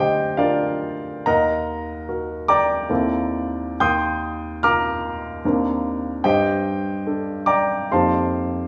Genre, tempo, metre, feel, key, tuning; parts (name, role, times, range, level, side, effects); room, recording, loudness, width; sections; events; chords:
classical, impressionist solo piano; 64-76 BPM; 3/4; rubato; A4 = 440 Hz
clear baby grand piano; solo; 0.0-8.7 s; D2 to G6; -22 LUFS; equal
moderate recital hall reverb, RT60 1.5 s; studio ambience; -22 LUFS; mono
0.0-8.7 A section
0.0 Dm7; 1.3 Ebm; 2.9 C13/Eb; 3.8 Eb69; 5.4 Bbadd9/Eb; 6.2 Gmadd9; 7.9 F9sus4